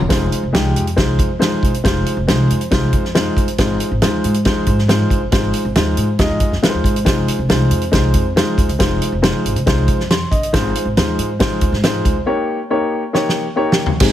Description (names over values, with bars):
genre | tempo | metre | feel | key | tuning
uptempo 1960s-style soul | 138 BPM | 4/4 | straight | unclear | A4 = 440 Hz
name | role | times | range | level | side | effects
percussive tonewheel organ | sustained chords | 0.0-0.1, 14.0-14.1 s | Eb3 to C4 | -29 LUFS | right 2 dB | none
upright bass | bass | 0.0-14.1 s | Fb1 to Ab2 | -19 LUFS | equal | none
dark upright piano | accompaniment | 0.1-14.1 s | Ab3 to C6 | -18 LUFS | left 1 dB | none
natural country drum kit | drums | 0.1-14.1 s | crash cymbal, hi-hat, kick drum, snare drum, toms | -17 LUFS | equal | none
tambourine | percussion | 14.0-14.1 s | none | -31 LUFS | right 5 dB | none
room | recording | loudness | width
light reverb | heavily compressed radio sound | -14 LUFS | side -12 dB against mid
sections
0.1-14.0 A section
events
drum fill 13.1-14.0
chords
0.1 Fm7; 3.6 Ab6; 7.1 Fm7; 10.5 Ab6; 12.3 Eb7